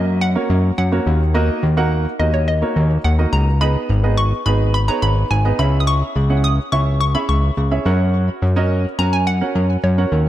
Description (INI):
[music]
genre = dance-pop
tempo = 106 BPM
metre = 4/4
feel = straight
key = unclear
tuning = A4 = 440 Hz
[part]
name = hollow square pluck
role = melody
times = 0.0-10.2 s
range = C#5 to D#6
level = -23 LUFS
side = left 1 dB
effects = chorus, tape echo
[part]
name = warm baby grand piano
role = accompaniment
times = 0.0-10.3 s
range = A#3 to G#5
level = -22 LUFS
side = right 3 dB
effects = none
[part]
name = fat analog bass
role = bass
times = 0.0-10.3 s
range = G#1 to F#2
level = -16 LUFS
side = equal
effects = none
[sound]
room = light reverb, small room reverb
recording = dark, warm production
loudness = -15 LUFS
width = side -13 dB against mid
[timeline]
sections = 0.0-10.3 A section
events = none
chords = 0.0 F#; 1.3 D#m; 3.6 G#m; 5.6 C#m; 7.9 F#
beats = 0.21 0.78 | 1.35 1.91 2.48 3.04 | 3.61 4.18 4.74 5.31 | 5.87 6.44 7.01 7.57 | 8.14 8.70 9.27 9.84